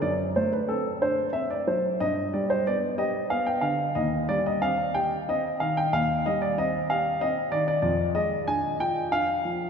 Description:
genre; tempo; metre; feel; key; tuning
classical, baroque-style suite movement for grand piano; 62 BPM (dotted quarters); 12/8; rubato; C minor; A4 = 440 Hz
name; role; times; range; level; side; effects
dark baby grand piano; solo; 0.0-9.7 s; Eb2 to Ab5; -24 LUFS; equal; none
room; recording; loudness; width
wet cathedral reverb, RT60 4.6 s; recorded in a church or concert hall; -24 LUFS; side -6 dB against mid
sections
0.0-9.7 A section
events
none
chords
0.0 D7/F#; 2.0 G; 4.0 Cm/Eb; 7.8 Ddim/F

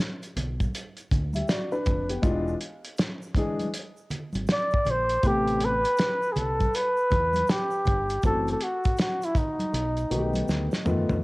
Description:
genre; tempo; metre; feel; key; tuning
hip hop, jazz-hop; 80 BPM; 4/4; swing 64% on 16ths; E minor; A4 = 440 Hz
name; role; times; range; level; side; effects
cloth-damped thuddy drum kit; drums; 0.2-11.2 s; hi-hat, kick drum, snare drum, toms; -27 LUFS; equal; vintage 12-bit sampler grit
egg shaker and congas; percussion; 0.2-11.2 s; none; -36 LUFS; right 1 dB; none
deep dub fingered electric bass; bass; 0.4-11.2 s; E1 to F#2; -30 LUFS; equal; none
dark grand piano; accompaniment; 1.4-11.2 s; C3 to E5; -28 LUFS; left 2 dB; cassette tape
breathy flugelhorn; melody; 4.5-10.5 s; D#4 to D5; -25 LUFS; equal; cassette tape, analog delay
room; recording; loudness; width
light reverb, small room ambience; home recording on cassette; -23 LUFS; side -22 dB against mid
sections
0.0-11.2 A section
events
drum fill 10.5-11.2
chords
0.0 G; 2.2 E7; 5.2 Am9; 8.2 F#m7b5; 9.7 B7alt

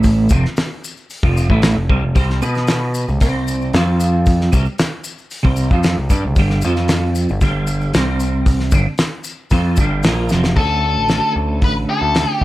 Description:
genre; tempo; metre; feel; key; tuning
psychedelic rock; 114 BPM; 4/4; straight; G mixolydian; A4 = 439 Hz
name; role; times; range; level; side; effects
twelve-string electric guitar; riff; 0.0-12.4 s; F2 to B4; -18 LUFS; right 1 dB; rotary speaker
growling picked electric bass; bass; 0.0-12.4 s; F1 to B2; -20 LUFS; equal; overdrive
cloth-damped thuddy drum kit; drums; 0.0-12.4 s; hi-hat, kick drum, snare drum; -17 LUFS; equal; none
maracas; percussion; 0.0-10.5 s; none; -33 LUFS; left 5 dB; none
octave-fuzz lead guitar; melody; 10.6-12.4 s; A4 to B4; -18 LUFS; left 3 dB; distortion, tape echo
room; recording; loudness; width
studio reverb; none; -14 LUFS; side -16 dB against mid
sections
0.0-10.6 A section; 10.6-12.4 B section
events
drum fill 10.3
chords
0.3 F5; 2.2 C5; 2.4 B5; 3.1 C#5; 3.2 C5; 3.7 F5; 4.5 C#5; 6.4 G5; 6.6 F5; 7.3 G5; 8.0 C5; 8.7 G5; 10.6 Dmaj7

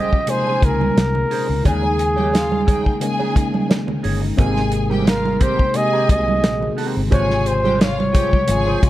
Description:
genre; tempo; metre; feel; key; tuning
lush 1970s-style soul; 88 BPM; 4/4; swing 54% on 16ths; unclear; A4 = 440 Hz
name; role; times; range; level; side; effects
breathy flugelhorn; melody; 0.0-8.9 s; Ab4 to Eb5; -20 LUFS; equal; none
warm studio violin section; second line; 0.0-8.9 s; F4 to Ab5; -28 LUFS; left 1 dB; tape echo
tine electric piano; accompaniment; 0.0-8.9 s; C3 to Ab4; -24 LUFS; left 2 dB; phaser
string machine, full ensemble; sustained chords; 0.0-8.9 s; Bb2 to F4; -31 LUFS; left 1 dB; none
electric guitar through a small old amp; riff; 0.0-8.9 s; C4 to Db5; -28 LUFS; right 6 dB; wah
vintage muted fingered electric bass; bass; 0.0-8.9 s; G1 to Eb2; -23 LUFS; equal; none
damped 70s drum kit; drums; 0.1-8.9 s; hi-hat, kick drum, snare drum; -18 LUFS; equal; none
congas; percussion; 0.5-8.8 s; none; -26 LUFS; right 4 dB; none
room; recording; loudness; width
light reverb, small room ambience; none; -15 LUFS; side -14 dB against mid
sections
0.0-8.9 A section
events
none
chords
0.0 Bbm9; 1.7 Eb7sus4; 4.4 Abmaj9; 7.1 Dbmaj7/Ab

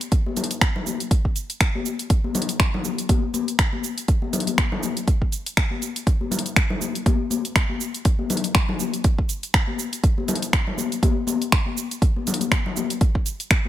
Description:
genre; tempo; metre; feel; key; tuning
house; 121 BPM; 4/4; swing 57% on 16ths; none; none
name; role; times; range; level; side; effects
deep house drum kit; drums; 0.0-13.6 s; cabasa, finger snaps, hi-hat; -25 LUFS; right 1 dB; small room ambience
electronic kick drum; drums; 0.1-13.6 s; none; -20 LUFS; right 1 dB; small room ambience
congas; percussion; 0.3-13.7 s; none; -26 LUFS; left 5 dB; none
room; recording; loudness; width
digital ambience; none; -20 LUFS; side -12 dB against mid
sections
0.0-13.7 A section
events
none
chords
none

